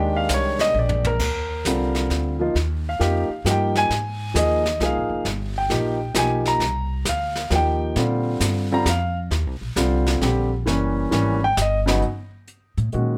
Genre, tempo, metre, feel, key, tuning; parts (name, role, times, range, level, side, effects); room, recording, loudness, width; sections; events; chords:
jazz piano trio; 133 BPM; 3/4; swing 66% on 8ths; Eb major; A4 = 440 Hz
warm concert grand piano; melody; 0.0-13.2 s; Db3 to A#5; -24 LUFS; equal
upright bass; bass; 0.0-13.2 s; F1 to Bb2; -26 LUFS; equal
jazz brush drum kit; drums; 0.3-13.1 s; brushed snare drum, crash cymbal, hi-hat, kick drum, snare drum, toms; -30 LUFS; equal
light reverb; -22 LUFS; mono
0.0-1.2 A section; 1.2-12.0 A section; 12.0-13.2 A section
grand piano solo 0.0-12.0; drum fill 0.8-1.2; upright bass solo 12.0-13.2
0.0 Eb6; 2.6 Ebadd9; 3.9 Ab6; 5.3 G7alt; 6.6 Cm9; 8.0 Bbadd9; 9.3 Eb6 (rootless); 10.7 Gb7b9; 12.0 Bmaj9 (rootless)